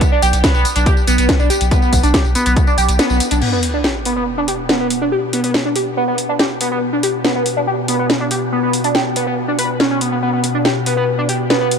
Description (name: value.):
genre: driving peak-time techno.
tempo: 141 BPM.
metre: 4/4.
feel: straight.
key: B minor.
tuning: A4 = 439 Hz.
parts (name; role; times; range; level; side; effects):
electronic kick drum; drums; 0.0-2.7 s; none; -15 LUFS; equal; none.
techno drum kit; drums; 0.0-11.8 s; crash cymbal, hi-hat, snare drum, tambourine; -20 LUFS; equal; sidechain pumping on hats, sidechain pumping on perc, sidechain pumping on cymbals.
overdriven synth lead; riff; 0.1-11.7 s; B3 to B4; -17 LUFS; equal; phaser, sidechain pumping, ping-pong delay.
saturated sub bass; bass; 0.2-3.4 s; B1; -17 LUFS; equal; sidechain pumping, low-pass filter.
metallic inharmonic drone; drone; 4.1-11.8 s; B2; -23 LUFS; left 2 dB; chorus, built-in reverb, sidechain pumping.
sub drop; sound effects; 3.4-5.1 s; none; -25 LUFS; equal; none.
room: light reverb, digital ambience.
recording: none.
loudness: -14 LUFS.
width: side -6 dB against mid.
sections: 0.0-3.4 A section; 3.4-11.8 B section.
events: kick drops out 3.0-3.4; band accent 3.0; impact 3.4-5.1.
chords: none.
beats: | 0.01 0.44 0.86 1.29 | 1.71 2.14 2.56 2.99 | 3.42 3.84 4.27 4.69 | 5.12 5.54 5.97 6.39 | 6.82 7.25 7.67 8.10 | 8.52 8.95 9.37 9.80 | 10.22 10.65 11.07 11.50.